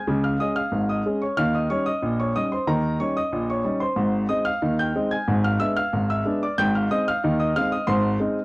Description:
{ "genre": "ragtime piano", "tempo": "92 BPM", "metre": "2/4", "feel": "straight", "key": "Ab major", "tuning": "A4 = 440 Hz", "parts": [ { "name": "clear grand piano", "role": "solo", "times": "0.0-8.4 s", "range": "Ab1 to Ab6", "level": "-20 LUFS", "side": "equal", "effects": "none" } ], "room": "little or no reverb", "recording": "dry, close 1970s-style studio recording", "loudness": "-20 LUFS", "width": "side -26 dB against mid", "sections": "0.0-8.4 A section", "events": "none", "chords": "0.1 Db; 1.4 Eb7; 4.0 Ab; 5.3 Abdim7; 6.6 Ab", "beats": "| 0.09 0.74 | 1.40 2.05 | 2.69 3.35 | 3.99 4.64 | 5.29 5.94 | 6.59 7.24 | 7.89" }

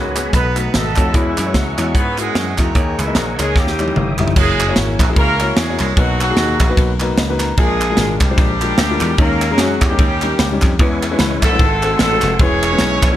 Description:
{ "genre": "uptempo gospel", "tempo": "149 BPM", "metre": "4/4", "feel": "swing 57% on 8ths", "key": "unclear", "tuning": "A4 = 441 Hz", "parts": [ { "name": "mellow horn section", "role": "melody", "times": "0.0-13.2 s", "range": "D#3 to C#5", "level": "-19 LUFS", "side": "right 1 dB", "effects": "none" }, { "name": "warm concert grand piano", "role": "accompaniment", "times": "0.0-13.2 s", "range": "G#2 to A#5", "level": "-22 LUFS", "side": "left 4 dB", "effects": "none" }, { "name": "tonewheel organ", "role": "sustained chords", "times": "0.0-4.4, 10.8-13.2 s", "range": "G#4 to D#6", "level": "-27 LUFS", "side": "right 2 dB", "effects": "slow rotary speaker, chorus vibrato" }, { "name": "dry thumbed slap bass", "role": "bass", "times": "0.0-13.2 s", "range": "E1 to G#2", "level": "-20 LUFS", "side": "equal", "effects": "none" }, { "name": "crisp fusion drum kit", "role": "drums", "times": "0.2-13.1 s", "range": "crash cymbal, hi-hat, kick drum, ride cymbal, snare drum, toms", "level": "-17 LUFS", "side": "equal", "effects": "none" }, { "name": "group handclap", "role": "percussion", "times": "0.2-13.1 s", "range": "none", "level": "-26 LUFS", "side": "right 3 dB", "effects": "none" } ], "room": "light reverb, studio reverb", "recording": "none", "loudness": "-13 LUFS", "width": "side -12 dB against mid", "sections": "0.0-4.4 A section; 4.4-13.2 B section", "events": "drum fill 3.6-4.4; grand piano fill 7.0-7.6", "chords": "0.3 B7; 1.1 E69; 2.8 D#7sus4; 3.6 D#7b9; 4.4 F#7; 6.0 Bmaj7; 7.6 A#7; 9.2 D#7sus4; 10.0 D#7; 10.8 E6; 11.6 G#7b9; 12.4 C#m7/E", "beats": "0.34 0.74 | 1.14 1.54 1.95 2.35 | 2.75 3.16 3.56 3.96 | 4.37 4.77 5.17 5.57 | 5.97 6.38 6.78 7.18 | 7.58 7.98 8.38 8.79 | 9.19 9.59 9.99 10.39 | 10.79 11.20 11.60 12.00 | 12.40 12.80" }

